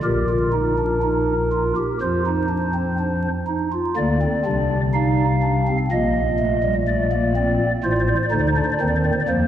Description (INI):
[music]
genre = classical, baroque-style 3-part fugue for pipe organ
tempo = 62 BPM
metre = 4/4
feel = straight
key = Bb major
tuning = A4 = 440 Hz
[part]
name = pipe organ, stopped flute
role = solo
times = 0.0-9.5 s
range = A1 to F5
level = -18 LUFS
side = equal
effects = none
[sound]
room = wet church reverb, RT60 2.9 s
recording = dark, warm production, vinyl crackle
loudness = -18 LUFS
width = side -10 dB against mid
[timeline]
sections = 0.0-4.0 A section; 4.0-9.5 B section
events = none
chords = 0.0 Fsus4/Bb; 2.0 F5; 4.0 Bb (rootless); 5.9 Cm7/Bb; 7.8 F7/A